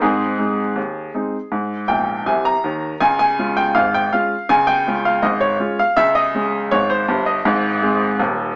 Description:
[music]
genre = ragtime piano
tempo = 81 BPM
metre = 2/4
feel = straight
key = unclear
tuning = A4 = 440 Hz
[part]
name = clear upright piano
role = solo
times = 0.0-8.5 s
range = Eb1 to Bb5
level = -18 LUFS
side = equal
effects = none
[sound]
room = moderate small room reverb, RT60 0.5 s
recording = small speaker sound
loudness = -18 LUFS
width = mono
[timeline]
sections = 0.0-3.0 A section; 3.0-8.6 B section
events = upright piano fill 1.9-3.0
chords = 0.0 Ab; 3.0 Db; 6.0 Db5; 7.4 Ab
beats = | 0.02 0.77 | 1.52 2.27 | 3.02 3.76 | 4.50 5.23 | 5.97 6.71 | 7.45 8.19

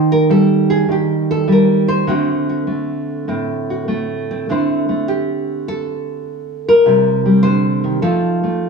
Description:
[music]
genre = solo jazz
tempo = 101 BPM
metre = 4/4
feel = swing 69% on 8ths, rubato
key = D minor from 4.5 s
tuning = A4 = 440 Hz
[part]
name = nylon-string guitar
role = solo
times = 0.0-8.7 s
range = A2 to C5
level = -14 LUFS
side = right 1 dB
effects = none
[sound]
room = wet large studio reverb, RT60 1.2 s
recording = band playing live in one room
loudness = -14 LUFS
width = side -4 dB against mid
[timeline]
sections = 0.0-4.5 A section; 4.5-8.7 B section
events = nylon-string guitar solo 0.0-4.5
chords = 0.0 Eb; 2.1 D7; 4.5 D9sus4; 6.9 Cm9; 8.0 F7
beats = 0.29 0.88 1.48 | 2.07 2.67 3.26 3.87 | 4.47 5.08 5.67 6.27 | 6.86 7.45 8.04 8.63

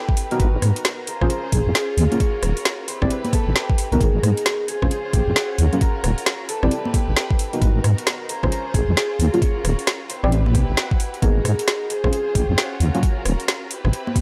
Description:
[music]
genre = UK garage, two-step garage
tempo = 133 BPM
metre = 4/4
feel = swing 62% on 16ths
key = unclear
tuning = A4 = 440 Hz
[part]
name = concert harp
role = melody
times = 0.0-14.2 s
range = F#4 to C#5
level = -30 LUFS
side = equal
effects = none
[part]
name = warm studio violin section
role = sustained chords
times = 0.0-14.2 s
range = B3 to B#4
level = -35 LUFS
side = equal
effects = sidechain pumping
[part]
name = electronic kick drum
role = drums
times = 0.1-14.2 s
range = none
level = -23 LUFS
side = equal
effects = overdrive, small room ambience
[part]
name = garage drum kit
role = drums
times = 0.2-14.2 s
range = congas, hi-hat, rim click, snare drum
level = -26 LUFS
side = equal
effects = overdrive, small room ambience
[part]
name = deep mellow chord stab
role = stabs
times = 0.3-13.0 s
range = F#3 to D5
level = -27 LUFS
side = equal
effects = chorus, phaser
[part]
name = deep soft wobble bass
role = bass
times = 0.4-13.9 s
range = D#1 to G#2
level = -21 LUFS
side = equal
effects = chorus, sidechain pumping
[sound]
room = little or no reverb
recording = dry, gritty hardware recording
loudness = -20 LUFS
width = mono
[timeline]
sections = 0.0-14.2 A section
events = none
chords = 0.4 G#m7; 1.1 A#m7; 2.0 D#m7; 2.9 Am7; 4.0 G#m7; 4.7 A#m7; 5.6 D#m7; 6.5 Am7; 7.6 G#m7; 8.3 A#m7; 9.2 D#m7; 10.1 Am7; 11.2 G#m7; 11.9 A#m7; 12.8 D#m7; 13.7 Am7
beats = | 0.40 0.85 1.30 1.75 | 2.20 2.65 3.10 3.56 | 4.01 4.46 4.91 5.36 | 5.81 6.26 6.71 7.16 | 7.62 8.07 8.52 8.97 | 9.42 9.87 10.32 10.77 | 11.22 11.68 12.13 12.58 | 13.03 13.48 13.93

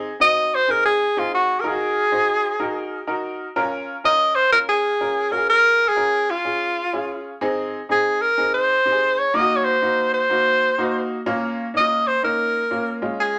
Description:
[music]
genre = soul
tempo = 125 BPM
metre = 4/4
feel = swing 64% on 8ths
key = Ab mixolydian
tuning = A4 = 440 Hz
[part]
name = clear upright piano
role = accompaniment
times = 0.0-13.4 s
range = Ab3 to C5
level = -28 LUFS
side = equal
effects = none
[part]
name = warm tenor saxophone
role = melody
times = 0.2-13.4 s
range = F4 to Eb5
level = -20 LUFS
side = equal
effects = none
[sound]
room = moderate studio ambience, RT60 0.4 s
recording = none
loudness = -20 LUFS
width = mono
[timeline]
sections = 0.0-13.4 A section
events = none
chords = 0.0 Ab; 1.6 Ebm; 3.6 Bbm; 5.2 Db; 7.4 Ab; 9.3 Ebm; 11.3 Bbm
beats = 0.19 0.67 1.15 | 1.63 2.12 2.60 3.08 | 3.56 4.04 4.52 5.00 | 5.48 5.97 6.45 6.93 | 7.41 7.89 8.37 8.86 | 9.34 9.82 10.30 10.78 | 11.26 11.74 12.22 12.71 | 13.19

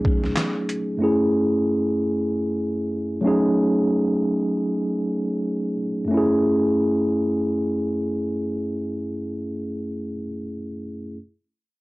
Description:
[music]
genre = hip hop, boom-bap hip-hop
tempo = free time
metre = none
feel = none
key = F# dorian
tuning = A4 = 440 Hz
[part]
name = mellow tine electric piano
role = accompaniment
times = 0.0-11.2 s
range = F#2 to G#4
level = -21 LUFS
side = equal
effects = fast stereo tremolo, high-pass filter, low-pass filter, cassette tape
[part]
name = trip hop sampler-style drum kit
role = drums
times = 0.0-0.9 s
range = handclaps, hi-hat, kick drum, snare drum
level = -22 LUFS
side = equal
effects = overdrive, cassette tape
[sound]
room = moderate studio reverb, RT60 0.5 s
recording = home recording on cassette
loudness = -20 LUFS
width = side -21 dB against mid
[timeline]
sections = 0.0-6.1 A section; 6.1-8.7 B section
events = none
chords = 0.0 F#m69; 1.0 F#m9; 3.2 F#m69; 6.1 F#m9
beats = free time

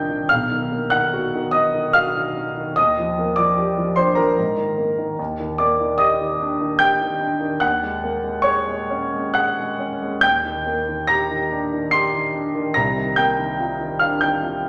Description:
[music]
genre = classical, impressionist solo piano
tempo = 63-76 BPM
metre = 3/4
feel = rubato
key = unclear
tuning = A4 = 440 Hz
[part]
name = clear grand piano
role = solo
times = 0.0-14.7 s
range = B1 to C7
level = -20 LUFS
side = equal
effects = none
[sound]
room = wet recital hall reverb, RT60 1.6 s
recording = none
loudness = -20 LUFS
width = mono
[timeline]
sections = 0.0-14.7 A section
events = none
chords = 0.3 Bmaj7; 2.8 Ebmaj9; 4.4 Absus2; 5.2 Ebmaj7; 7.6 Gb69/Eb; 10.2 Ebmaj7; 12.7 Cm11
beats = | 0.30 1.12 1.95 | 2.77 3.58 4.37 | 5.19 6.00 6.81 | 7.62 8.44 9.35 | 10.22 11.08 11.91 | 12.74 13.58 14.43

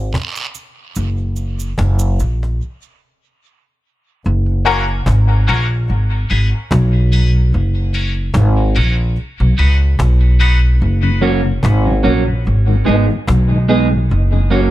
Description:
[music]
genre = dub reggae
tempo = 73 BPM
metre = 4/4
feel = swing 55% on 16ths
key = F# major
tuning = A4 = 438 Hz
[part]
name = upright bass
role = bass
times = 0.0-14.7 s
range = F#1 to C#2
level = -13 LUFS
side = equal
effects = none
[part]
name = cajon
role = drums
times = 0.1-14.6 s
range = none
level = -20 LUFS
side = equal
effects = none
[part]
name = guiro and cabasa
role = percussion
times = 0.1-2.4 s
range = none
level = -28 LUFS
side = right 5 dB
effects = high-pass filter on perc, dub echo
[part]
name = mellow tonewheel organ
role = accompaniment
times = 4.5-14.6 s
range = F#2 to G#4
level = -22 LUFS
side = left 2 dB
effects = chorus vibrato, slow rotary speaker, high-pass filter, dub echo
[part]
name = clean electric guitar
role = accompaniment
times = 4.7-14.7 s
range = F#3 to G#4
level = -20 LUFS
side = right 4 dB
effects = high-pass filter, low-pass filter, dub echo
[part]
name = bright upright piano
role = stabs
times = 4.7-10.6 s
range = A#3 to B4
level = -23 LUFS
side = left 7 dB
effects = high-pass filter, low-pass filter, dub echo
[sound]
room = studio reverb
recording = none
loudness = -12 LUFS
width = side -15 dB against mid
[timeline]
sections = 0.0-4.2 A section; 4.2-14.7 B section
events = break 0.0-4.2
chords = 0.0 N.C.; 1.0 F#; 2.6 N.C.; 4.2 F#; 5.9 G#m; 7.5 F#; 9.2 B; 10.8 F#; 12.4 G#m; 14.1 F#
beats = 0.14 | 0.96 1.78 2.60 3.42 | 4.24 5.06 5.88 6.70 | 7.52 8.35 9.17 9.99 | 10.81 11.63 12.45 13.27 | 14.09

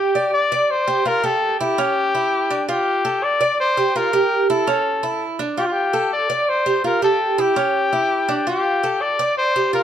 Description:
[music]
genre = latin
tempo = 166 BPM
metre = 4/4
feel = straight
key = unclear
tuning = A4 = 440 Hz
[part]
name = warm trumpet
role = melody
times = 0.0-9.8 s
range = F4 to D5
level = -19 LUFS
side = left 2 dB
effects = none
[part]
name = Cuban tres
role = arpeggios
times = 0.0-9.8 s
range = C#4 to D5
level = -21 LUFS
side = right 3 dB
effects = none
[sound]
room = moderate plate reverb, RT60 2.4 s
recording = dark, warm production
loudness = -17 LUFS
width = side -9 dB against mid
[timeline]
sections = 0.3-9.8 A section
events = none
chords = 0.3 Gsus4; 1.1 Emadd11; 1.8 C#dim; 2.5 G5; 3.2 D5; 3.9 Gm7; 4.7 A; 5.4 G5; 6.1 D5; 6.8 Emadd11; 7.6 C#dim; 8.3 G5; 9.0 D5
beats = | 0.33 0.69 1.06 1.42 | 1.78 2.14 2.50 2.86 | 3.23 3.59 3.95 4.31 | 4.67 5.03 5.39 5.76 | 6.12 6.48 6.84 7.20 | 7.56 7.93 8.29 8.65 | 9.01 9.37 9.73

